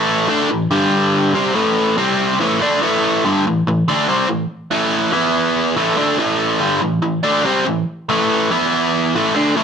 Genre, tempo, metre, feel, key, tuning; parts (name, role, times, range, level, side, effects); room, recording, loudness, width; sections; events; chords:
rock; 142 BPM; 4/4; straight; A4 = 440 Hz
biting overdriven guitar; solo; 0.0-9.6 s; G2 to E4; -14 LUFS; equal
moderate studio reverb, RT60 0.8 s; band playing live in one room; -14 LUFS; side -7 dB against mid
0.0-2.4 A section; 2.4-9.6 B section
0.0 A5; 0.7 G5; 1.3 A5; 2.0 C5; 2.4 A5; 5.1 E5; 5.8 A5; 8.5 E5